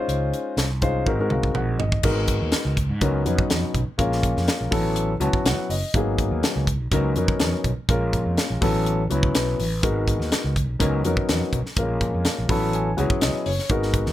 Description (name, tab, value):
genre	electric jazz fusion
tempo	123 BPM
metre	4/4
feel	straight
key	unclear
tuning	A4 = 439 Hz
part	dark grand piano	accompaniment	0.0-14.1 s	F#3 to B5	-24 LUFS	left 2 dB	none
part	fretless electric bass	bass	0.1-14.1 s	F#1 to Ab2	-25 LUFS	right 1 dB	none
part	crisp fusion drum kit	drums	0.1-14.1 s	crash cymbal, hi-hat, kick drum, snare drum, toms	-24 LUFS	equal	none
room	light reverb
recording	none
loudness	-20 LUFS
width	side -13 dB against mid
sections	0.0-2.0 A section; 2.0-14.1 B section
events	drum fill 1.1-2.0; grand piano fill 1.1-2.0, 5.0-5.9, 9.1-9.8, 12.3-13.7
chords	0.0 Dbmaj9; 1.1 Ab9; 2.0 G#m9; 3.0 C#13sus4; 4.0 A#m7; 4.7 A69; 5.9 G#m9; 6.9 C#13sus4; 7.9 A#m7; 8.6 A69; 9.8 G#m9; 10.8 C#13sus4; 11.8 A#m7; 12.5 A69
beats	| 0.09 0.58 1.06 1.55 | 2.04 2.53 3.02 3.51 | 4.00 4.48 4.97 5.46 | 5.95 6.43 6.92 7.41 | 7.89 8.38 8.86 9.35 | 9.83 10.32 10.80 11.28 | 11.77 12.25 12.73 13.22 | 13.70